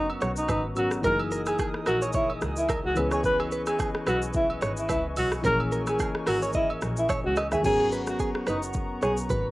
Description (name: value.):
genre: afrobeats.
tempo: 109 BPM.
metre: 4/4.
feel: swing 55% on 16ths.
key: G# minor.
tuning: A4 = 440 Hz.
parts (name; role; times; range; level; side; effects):
mellow alto saxophone; melody; 0.0-9.2 s; D#4 to B4; -27 LUFS; equal; cassette tape.
soft electric-piano-like synth keys; accompaniment; 0.0-9.5 s; E3 to A#4; -33 LUFS; left 2 dB; chorus, cassette tape.
hollow soft pad; sustained chords; 0.0-9.5 s; B3 to D#6; -38 LUFS; equal; chorus, sidechain pumping, cassette tape.
muted double bass; bass; 0.0-9.5 s; F#1 to D#2; -32 LUFS; equal; none.
agogo bells and woodblock; percussion; 0.1-7.5 s; none; -38 LUFS; right 3 dB; none.
direct-recorded clean electric guitar; riff; 0.2-9.5 s; G#4 to E5; -31 LUFS; right 2 dB; cassette tape.
afro-pop drum kit; drums; 0.2-9.4 s; crash cymbal, hi-hat, kick drum, rim click, shaker; -33 LUFS; equal; overdrive, cassette tape.
room: light reverb.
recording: home recording on cassette.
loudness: -24 LUFS.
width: side -18 dB against mid.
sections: 0.0-7.6 A section; 7.6-9.5 B section.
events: none.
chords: 0.0 G#m11; 1.0 F#13; 3.0 C#m7; 5.4 A#m7b5; 7.6 G#m11.